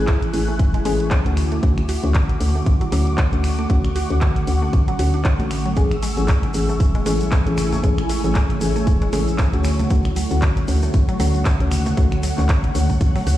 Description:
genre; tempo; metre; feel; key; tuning
deep house; 116 BPM; 4/4; swing 57% on 16ths; unclear; A4 = 443 Hz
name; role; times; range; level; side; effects
warm analog pad; sustained chords; 0.0-13.4 s; A3 to F#6; -31 LUFS; right 3 dB; chorus, sidechain pumping
mellow FM electric piano; stabs; 0.0-13.2 s; D3 to G#4; -24 LUFS; left 2 dB; chorus, cassette tape, sidechain pumping, tape echo
hollow knocking FM bass; bass; 0.0-13.4 s; E1 to D2; -22 LUFS; equal; tube saturation, sidechain pumping
ethereal airy pad; texture; 0.0-13.4 s; D3 to G#5; -30 LUFS; right 1 dB; ensemble chorus, built-in reverb, phaser, sidechain pumping
electronic kick drum; drums; 0.1-13.1 s; none; -18 LUFS; equal; none
house drum kit; drums; 0.1-13.4 s; finger snaps, handclaps, hi-hat; -30 LUFS; equal; none
mallet-like synth pluck; arpeggios; 0.5-13.3 s; F#3 to F#4; -32 LUFS; right 2 dB; chorus, phaser, sidechain pumping, tape echo
tube shaker; percussion; 5.8-13.4 s; none; -37 LUFS; left 2 dB; none
congas; percussion; 6.2-13.4 s; none; -32 LUFS; right 2 dB; none
room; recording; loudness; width
light reverb; played on a big sound system in a bare room, stone room reverb; -16 LUFS; side -14 dB against mid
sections
0.0-13.4 A section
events
filter sweep on synth arpeggio sound 0.0-13.4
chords
0.0 Amaj7; 1.4 Dmaj7; 5.8 Amaj7; 9.6 Dmaj7

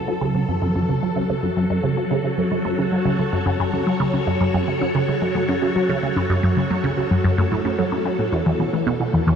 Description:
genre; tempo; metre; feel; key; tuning
ambient, sequencer-driven space music; 111 BPM; 4/4; straight; F# minor; A4 = 440 Hz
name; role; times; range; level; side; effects
phased string machine; sustained chords; 0.0-9.4 s; E3 to C#5; -23 LUFS; left 1 dB; ensemble chorus, phaser
resonant blip pluck; riff; 0.0-9.3 s; E2 to F#3; -21 LUFS; right 1 dB; phaser, tape echo
warbly dusty pluck; arpeggios; 0.1-9.4 s; E3 to A4; -26 LUFS; equal; chorus, auto-pan, tape echo
room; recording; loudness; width
moderate huge ambient reverb, RT60 7.7 s; dark, warm production; -18 LUFS; side -7 dB against mid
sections
0.0-9.4 A section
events
filter sweep on synth arpeggio sound 0.0-9.4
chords
0.0 F#m; 8.3 Esus4

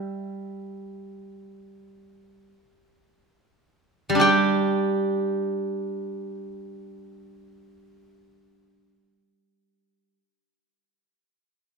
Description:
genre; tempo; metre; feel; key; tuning
chinese traditional, Chinese solo plucked strings; free time; none; none; unclear; A4 = 440 Hz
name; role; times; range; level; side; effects
steel-string zither; solo; 0.0-10.2 s; G3 to G5; -23 LUFS; right 2 dB; none
room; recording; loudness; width
moderate concert hall reverb, RT60 2.1 s; minimal, uncompressed stereo recording; -22 LUFS; side -4 dB against mid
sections
0.0-4.2 A section; 4.2-10.4 B section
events
slowing down 0.0-4.2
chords
none

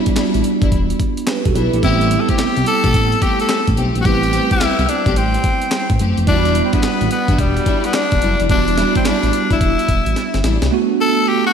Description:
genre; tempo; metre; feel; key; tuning
R&B, new jack swing; 108 BPM; 4/4; swing 65% on 16ths; E minor; A4 = 438 Hz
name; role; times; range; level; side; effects
bell-like tine electric piano; accompaniment; 0.0-11.5 s; G3 to B4; -20 LUFS; right 8 dB; analog chorus
warm studio string section; stabs; 0.0-10.6 s; G3 to G4; -23 LUFS; left 4 dB; none
breakbeat sampler-style drum kit; drums; 0.1-10.7 s; handclaps, hi-hat, kick drum, snare drum; -20 LUFS; equal; none
smooth synth bass; bass; 0.2-10.7 s; E1 to C2; -19 LUFS; equal; none
raspy tenor saxophone; melody; 1.8-11.5 s; G3 to A4; -18 LUFS; left 2 dB; none
room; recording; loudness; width
wet lush hall reverb, RT60 1.9 s, digital ambience; big arena sound; -14 LUFS; side -7 dB against mid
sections
0.0-10.7 A section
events
drum fill 10.2-10.7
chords
0.0 Em7; 1.8 Am7; 6.3 Em7; 10.7 Bm7

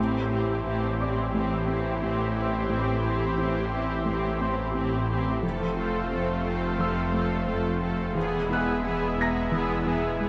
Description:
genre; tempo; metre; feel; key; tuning
cinematic, hybrid orchestral and electronic film score; 88 BPM; 4/4; straight; unclear; A4 = 440 Hz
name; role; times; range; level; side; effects
warm symphonic viola section; accompaniment; 0.0-10.3 s; A3 to A4; -33 LUFS; equal; none
lush unison pad; sustained chords; 0.0-10.3 s; E3 to E5; -32 LUFS; equal; chorus
warbly dusty pluck; arpeggios; 0.0-10.3 s; E3 to G4; -38 LUFS; equal; none
phased detuned saw bass; bass; 0.0-10.3 s; E1 to A1; -36 LUFS; equal; phaser
rich symphonic cello section; bass; 0.0-10.3 s; E2 to A2; -33 LUFS; equal; none
felt-muted upright piano; texture; 1.0-10.3 s; D5 to Bb6; -38 LUFS; equal; delay
room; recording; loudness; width
moderate scoring stage reverb, RT60 1.6 s; none; -27 LUFS; mono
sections
0.0-10.3 A section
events
build-up 0.0-10.3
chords
0.0 Am7; 5.4 F; 8.2 E

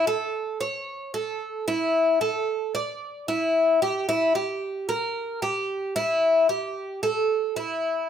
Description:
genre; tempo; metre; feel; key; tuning
latin; 112 BPM; 4/4; straight; unclear; A4 = 436 Hz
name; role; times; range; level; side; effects
Cuban tres; solo; 0.0-8.1 s; E4 to D5; -23 LUFS; equal; none
room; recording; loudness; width
moderate large studio reverb, RT60 0.9 s; none; -23 LUFS; side -8 dB against mid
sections
0.0-8.1 A section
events
none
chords
none

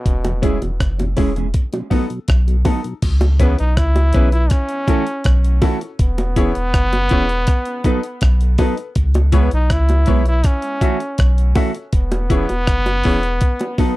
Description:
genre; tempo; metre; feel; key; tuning
roots reggae; 81 BPM; 4/4; straight; C# minor; A4 = 440 Hz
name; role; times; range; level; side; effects
brilliant trombone; melody; 0.0-14.0 s; B2 to E4; -23 LUFS; equal; tape echo
warm sub bass; bass; 0.1-13.4 s; E1 to C#2; -16 LUFS; equal; none
breakbeat sampler-style drum kit; drums; 0.1-14.0 s; crash cymbal, hi-hat, kick drum, rim click; -17 LUFS; equal; none
mellow tonewheel organ; accompaniment; 0.2-2.9 s; E2 to E4; -28 LUFS; left 1 dB; chorus vibrato, slow rotary speaker, tape echo
bongos; percussion; 0.2-14.0 s; none; -24 LUFS; right 1 dB; none
mellow electric guitar; accompaniment; 0.4-13.9 s; E3 to A4; -24 LUFS; right 4 dB; tape echo
bright upright piano; stabs; 0.4-13.9 s; B3 to E5; -24 LUFS; left 6 dB; none
room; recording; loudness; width
little or no reverb; dry, close 1970s-style studio recording; -14 LUFS; side -18 dB against mid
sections
0.0-3.0 A section; 3.0-14.0 B section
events
none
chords
0.1 E6; 1.5 B7; 3.0 C#m7; 4.5 F#m7; 6.0 E6; 7.5 B7; 9.0 C#m7; 10.4 F#m7; 11.9 E6; 13.4 B7

